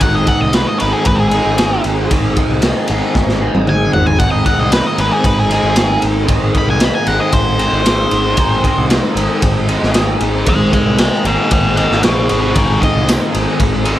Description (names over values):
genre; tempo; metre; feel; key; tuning
psychedelic rock; 115 BPM; 4/4; straight; Ab major; A4 = 440 Hz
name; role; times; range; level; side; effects
octave-fuzz lead guitar; melody; 0.0-13.1 s; Ab4 to Cb6; -18 LUFS; equal; distortion, analog delay
tonewheel organ; sustained chords; 0.0-14.0 s; C4 to Ab4; -27 LUFS; right 4 dB; none
overdriven semi-hollow guitar; riff; 0.0-14.0 s; Ab2 to Ab4; -18 LUFS; equal; flanger
fuzz picked electric bass; bass; 0.0-13.9 s; Ab1 to C2; -19 LUFS; equal; overdrive
crunchy breakbeat drum kit; drums; 0.0-14.0 s; kick drum, ride cymbal, snare drum, toms; -16 LUFS; equal; none
tambourine; percussion; 13.1-13.2 s; none; -30 LUFS; left 5 dB; none
room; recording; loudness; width
studio reverb; none; -11 LUFS; side -13 dB against mid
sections
0.0-14.0 A section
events
lead electric guitar solo 0.0-14.0; drum fill 3.1-4.2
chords
0.0 Ab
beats
| 0.01 0.54 1.06 1.58 | 2.10 2.63 3.15 3.67 | 4.20 4.72 5.24 5.76 | 6.29 6.81 7.33 7.85 | 8.38 8.90 9.42 9.94 | 10.46 10.99 11.51 12.03 | 12.55 13.08 13.60